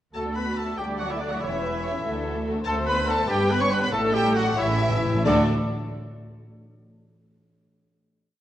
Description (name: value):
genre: quick classical-period movement for symphony orchestra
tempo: 94 BPM (dotted quarters)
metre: 6/8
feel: rubato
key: D major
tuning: A4 = 445 Hz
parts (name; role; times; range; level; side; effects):
- rich chamber violin section; melody; 0.1-5.5 s; D5 to C#6; -32 LUFS; left 2 dB; none
- clear symphonic violin section; second line; 0.2-5.5 s; A3 to B4; -35 LUFS; left 3 dB; none
- concert flute; second line; 0.2-5.5 s; D5 to C#6; -32 LUFS; left 1 dB; none
- warm oboe; second line; 0.2-5.4 s; D4 to D5; -32 LUFS; right 1 dB; none
- warm chamber viola section; accompaniment; 0.2-5.5 s; D3 to D5; -31 LUFS; equal; none
- mellow French horn section; sustained chords; 0.2-5.4 s; D3 to D4; -29 LUFS; left 2 dB; none
- bright trumpet section; stabs; 0.2-5.4 s; D4 to C#5; -31 LUFS; right 1 dB; none
- dark chamber cello section; bass; 0.2-5.5 s; D2 to A2; -31 LUFS; right 2 dB; none
- warm chamber double bass section; bass; 0.2-5.5 s; E1 to D2; -31 LUFS; right 2 dB; none
- timpani; percussion; 3.9-5.5 s; A2 to D3; -31 LUFS; left 1 dB; none
room: wet recital hall reverb, RT60 1.8 s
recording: worn, warbling old tape, cassette tape, warbly pitch drift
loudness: -21 LUFS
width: side -12 dB against mid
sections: 0.2-5.2 A section; 5.2-6.5 final chord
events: timpani fill 4.6-5.2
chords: 0.2 D; 1.4 C#dim/E; 2.0 D; 2.7 D7; 3.3 G; 3.9 D/A; 4.6 A7; 5.2 D5